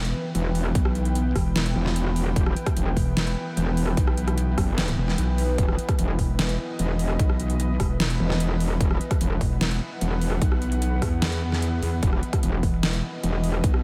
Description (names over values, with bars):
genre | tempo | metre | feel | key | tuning
heavy wobble dubstep | 149 BPM | 4/4 | half-time | E harmonic minor | A4 = 443 Hz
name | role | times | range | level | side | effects
evolving wavetable pad | sustained chords | 0.0-13.8 s | E3 to G5 | -34 LUFS | equal | chorus, built-in reverb, sidechain pumping
pulsing pluck wobble bass | bass | 0.0-13.8 s | E1 to E2 | -27 LUFS | equal | chorus, overdrive
dubstep drum kit | drums | 0.0-13.8 s | hi-hat, rim click, snare drum | -32 LUFS | equal | overdrive
metallic wobble bass | bass | 0.3-13.6 s | E1 to F#1 | -26 LUFS | equal | distortion, chorus, overdrive
electronic kick drum | drums | 0.8-13.7 s | none | -26 LUFS | equal | overdrive
room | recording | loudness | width
light reverb | none | -24 LUFS | mono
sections
0.0-13.8 A section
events
none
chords
0.0 E5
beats
0.35 | 0.75 1.15 1.56 1.96 | 2.36 2.77 3.17 3.57 | 3.97 4.38 4.78 5.18 | 5.58 5.99 6.39 6.79 | 7.19 7.60 8.00 8.40 | 8.80 9.21 9.61 10.01 | 10.42 10.82 11.22 11.62 | 12.03 12.43 12.83 13.23 | 13.64